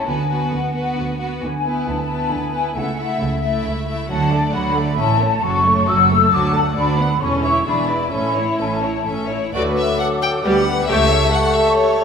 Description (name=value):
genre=quick classical-period movement for symphony orchestra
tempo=134 BPM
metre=3/4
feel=straight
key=A major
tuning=A4 = 441 Hz
part: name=rich chamber violin section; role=melody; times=0.0-12.0 s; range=A4 to A5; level=-25 LUFS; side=left 4 dB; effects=none
part: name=large flute ensemble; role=second line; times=0.0-12.0 s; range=E5 to E6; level=-20 LUFS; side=left 2 dB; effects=none
part: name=rich chamber violin section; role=second line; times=0.0-12.0 s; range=C#4 to C#5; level=-28 LUFS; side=left 3 dB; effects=none
part: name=rich chamber viola section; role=accompaniment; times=0.0-11.1 s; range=F#3 to G4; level=-24 LUFS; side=equal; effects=none
part: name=rich chamber cello section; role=bass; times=0.1-11.3 s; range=C#2 to D3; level=-25 LUFS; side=right 3 dB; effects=none
part: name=rich chamber double bass section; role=bass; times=0.1-11.3 s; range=E1 to D2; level=-25 LUFS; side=right 2 dB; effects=none
part: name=warm clarinet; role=second line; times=9.5-12.0 s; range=G4 to B4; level=-26 LUFS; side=left 2 dB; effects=none
part: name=warm bassoon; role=accompaniment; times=9.5-12.0 s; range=F#3 to A3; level=-23 LUFS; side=right 1 dB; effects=none
part: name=warm French horn section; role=sustained chords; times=9.5-12.0 s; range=G3 to A4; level=-23 LUFS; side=left 2 dB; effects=none
room=wet scoring stage reverb, RT60 2.1 s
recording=minimal, uncompressed stereo recording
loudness=-16 LUFS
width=side -6 dB against mid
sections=0.0-9.5 A section; 9.5-12.0 B section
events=none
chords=0.1 Bm/D; 2.8 A/C#; 4.1 D; 5.0 A; 5.4 F#m; 6.3 D; 6.8 Bm/D; 7.2 A/E; 7.7 E7; 8.1 A; 9.5 D; 10.4 G/D; 10.9 A7/C#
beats=| 0.07 0.52 0.97 | 1.42 1.87 2.32 | 2.77 3.21 3.66 | 4.11 4.54 4.99 | 5.43 5.88 6.33 | 6.77 7.22 7.67 | 8.14 8.61 9.07 | 9.54 9.99 10.44 | 10.89 11.33 11.78